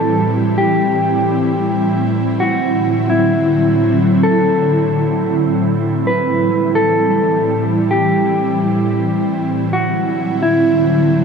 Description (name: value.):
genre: hip hop.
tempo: 131 BPM.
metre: 4/4.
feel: half-time.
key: A dorian.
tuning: A4 = 442 Hz.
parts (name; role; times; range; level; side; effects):
mellow electric guitar; melody; 0.0-11.2 s; E4 to B4; -17 LUFS; left 1 dB; ping-pong delay.
ethereal airy pad; sustained chords; 0.0-11.2 s; A2 to E4; -15 LUFS; right 1 dB; ensemble chorus, built-in reverb.
room: moderate huge ambient reverb, RT60 7.1 s.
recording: none.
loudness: -13 LUFS.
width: side -6 dB against mid.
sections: 0.0-11.2 A section.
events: none.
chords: 0.0 Am7; 2.2 D9; 5.8 Am7; 9.5 D9.